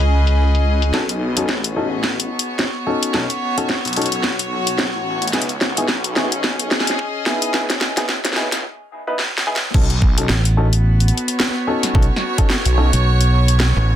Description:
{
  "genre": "glitch hop",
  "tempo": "109 BPM",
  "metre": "4/4",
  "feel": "swing 57% on 16ths",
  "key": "unclear",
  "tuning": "A4 = 440 Hz",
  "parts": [
    { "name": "warm baby grand piano", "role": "stabs", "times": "0.0-12.9 s", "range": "B3 to B4", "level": "-24 LUFS", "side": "left 2 dB", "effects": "sidechain pumping, low-pass filter, dub echo" },
    { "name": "phased detuned saw bass", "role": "bass", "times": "0.0-12.9 s", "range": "A1 to C#2", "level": "-20 LUFS", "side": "equal", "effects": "phaser, tube saturation, high-pass filter" },
    { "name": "drum and bass drum kit", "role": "drums", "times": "0.0-13.7 s", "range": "crash cymbal, hi-hat, snare drum", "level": "-20 LUFS", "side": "equal", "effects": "low-pass filter on hats, soft clipping on snare, low-pass filter on snare, low-pass filter on cymbals, low-pass filter on room" },
    { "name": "rich chamber string section", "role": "texture", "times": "0.0-14.0 s", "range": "B3 to D#5", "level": "-24 LUFS", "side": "equal", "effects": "sidechain pumping" },
    { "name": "electronic kick drum", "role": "drums", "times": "0.9-12.5 s", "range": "none", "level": "-18 LUFS", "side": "equal", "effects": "high-pass filter on kick, high-pass filter on room" },
    { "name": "fingered electric bass", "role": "bass", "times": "10.3-14.0 s", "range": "A1 to B1", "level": "-14 LUFS", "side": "equal", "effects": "none" }
  ],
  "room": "light reverb",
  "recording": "dense, heavily limited modern master, high-pass filter",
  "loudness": "-16 LUFS",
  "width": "side -11 dB against mid",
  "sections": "0.9-9.7 A section; 9.7-14.0 B section",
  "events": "build-up 0.9-9.7; drum fill 0.9-8.6, 9.2-9.7; filter sweep on grand piano 0.9-9.7; break 8.6-9.7; drop 9.7-14.0",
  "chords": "0.0 C#m7; 0.9 B9; 5.3 C#m7; 9.7 B9"
}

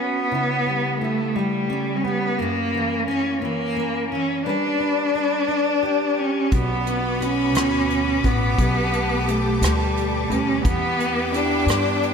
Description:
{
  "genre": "six-eight pop ballad",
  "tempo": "58 BPM (dotted quarters)",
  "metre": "6/8",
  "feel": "straight",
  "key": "unclear",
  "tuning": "A4 = 440 Hz",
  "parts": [
    { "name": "clear cello", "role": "melody", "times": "0.0-12.1 s", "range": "G3 to D4", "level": "-21 LUFS", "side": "equal", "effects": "slapback echo, tape echo" },
    { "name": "fingerpicked plugged-in steel-string acoustic guitar", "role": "accompaniment", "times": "0.0-12.1 s", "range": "F#2 to B4", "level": "-27 LUFS", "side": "equal", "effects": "double-tracked left and right, slapback echo" },
    { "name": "rich studio string section", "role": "sustained chords", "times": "6.5-12.1 s", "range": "E4 to D6", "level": "-29 LUFS", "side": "left 3 dB", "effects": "none" },
    { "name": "upright bass", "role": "bass", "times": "6.5-12.1 s", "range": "A1 to G2", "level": "-25 LUFS", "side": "equal", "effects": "none" },
    { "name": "soft brush drum kit", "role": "drums", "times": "6.5-12.1 s", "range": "hi-hat, kick drum, rim click", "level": "-25 LUFS", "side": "equal", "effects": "none" }
  ],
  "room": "wet lush hall reverb, RT60 2.7 s",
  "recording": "big arena sound",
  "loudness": "-19 LUFS",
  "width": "side -6 dB against mid",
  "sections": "0.0-12.1 A section",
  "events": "none",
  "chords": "0.3 C#dim; 2.4 F#7; 4.5 G; 6.5 Bm; 8.6 Gadd9/B; 10.6 Em7"
}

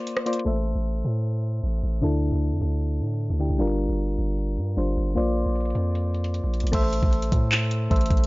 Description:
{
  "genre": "hip hop, trap",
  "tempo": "153 BPM",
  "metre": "4/4",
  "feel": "half-time",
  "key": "A phrygian",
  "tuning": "A4 = 440 Hz",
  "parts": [
    { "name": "soft electric-piano-like synth keys", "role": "accompaniment", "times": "0.0-8.3 s", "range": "D3 to E5", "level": "-27 LUFS", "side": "left 1 dB", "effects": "chorus, low-pass filter" },
    { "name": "trap drum kit", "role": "drums", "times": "0.1-8.3 s", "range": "crash cymbal, handclaps, hi-hat, kick drum, rim click", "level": "-23 LUFS", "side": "equal", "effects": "none" },
    { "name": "long sustained 808-style bass", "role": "bass", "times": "0.5-8.3 s", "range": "G1 to A2", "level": "-24 LUFS", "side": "equal", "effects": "none" }
  ],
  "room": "little or no reverb",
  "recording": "low-pass filter, nothing above 7.5 kHz",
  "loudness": "-22 LUFS",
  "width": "side -21 dB against mid",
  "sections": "0.5-6.7 A section; 6.7-8.3 B section",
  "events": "break 0.0-0.5; filter sweep 0.5-6.7",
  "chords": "0.5 Am; 2.0 Dsus2; 3.6 Gm7; 5.2 Bbadd9; 6.7 Am"
}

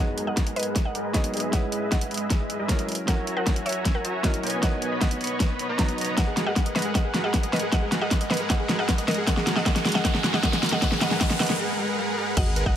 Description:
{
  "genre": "future bass",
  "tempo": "155 BPM",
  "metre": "4/4",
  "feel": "half-time",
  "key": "G# minor",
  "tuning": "A4 = 439 Hz",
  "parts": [
    { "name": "mallet-like synth pluck", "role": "melody", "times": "0.0-12.8 s", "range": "F#4 to F#5", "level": "-31 LUFS", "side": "equal", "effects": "chorus, sidechain pumping, tape echo" },
    { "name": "felt-muted upright piano", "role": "accompaniment", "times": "0.0-6.2 s", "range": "F#3 to A#5", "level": "-33 LUFS", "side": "right 1 dB", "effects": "sidechain pumping, tape echo" },
    { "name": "dense compressed supersaw", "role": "riff", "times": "0.0-12.8 s", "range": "G#3 to C#6", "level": "-29 LUFS", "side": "equal", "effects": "sidechain pumping, low-pass filter" },
    { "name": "pop drum kit", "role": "drums", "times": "0.2-12.6 s", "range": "crash cymbal, hi-hat, snare drum", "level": "-26 LUFS", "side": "equal", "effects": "overdrive" },
    { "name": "electronic kick drum", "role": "drums", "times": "0.4-12.7 s", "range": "none", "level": "-25 LUFS", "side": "equal", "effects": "none" },
    { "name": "soft round pluck", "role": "arpeggios", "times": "6.2-12.7 s", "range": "F#4 to D#5", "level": "-35 LUFS", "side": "equal", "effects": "chorus, sidechain pumping, tape echo" },
    { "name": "riser and sub drop", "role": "sound effects", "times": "7.8-12.8 s", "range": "none", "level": "-33 LUFS", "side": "right 1 dB", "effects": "none" },
    { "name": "long sustained 808-style bass", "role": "bass", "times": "12.4-12.8 s", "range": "G#1", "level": "-26 LUFS", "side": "equal", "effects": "sidechain pumping" }
  ],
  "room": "light reverb",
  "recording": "none",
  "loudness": "-22 LUFS",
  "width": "side -10 dB against mid",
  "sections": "0.0-12.4 A section",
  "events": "build-up 0.0-12.4; drum fill 0.0-11.6; filter sweep on supersaw synth 0.0-12.4; filter sweep on synth pluck 0.0-12.4; riser 7.8-11.6; break 11.6-12.4; impact 12.4-12.8",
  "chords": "0.0 G#m7; 1.5 F#7; 4.6 Bmaj7; 6.2 G#m9; 9.1 F#; 10.8 Bmaj7"
}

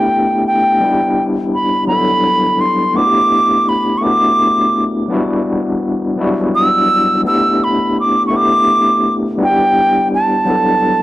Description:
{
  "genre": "R&B",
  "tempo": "56 BPM (dotted quarters)",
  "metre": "6/8",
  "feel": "straight",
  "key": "E minor",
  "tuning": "A4 = 441 Hz",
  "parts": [
    { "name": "reedy concert flute", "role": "melody", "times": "0.0-11.0 s", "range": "G5 to E6", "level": "-13 LUFS", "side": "right 1 dB", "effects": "none" },
    { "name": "overdriven tine electric piano", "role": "accompaniment", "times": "0.0-11.0 s", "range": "F#3 to A4", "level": "-16 LUFS", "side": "left 1 dB", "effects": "fast tremolo" }
  ],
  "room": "light reverb, studio reverb",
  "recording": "dry, gritty hardware recording",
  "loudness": "-11 LUFS",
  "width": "side -16 dB against mid",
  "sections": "0.0-11.0 A section",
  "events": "none",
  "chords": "0.0 A9sus4; 0.8 Em9; 3.0 A9sus4; 5.1 Em9; 7.2 A9sus4; 9.4 Em9"
}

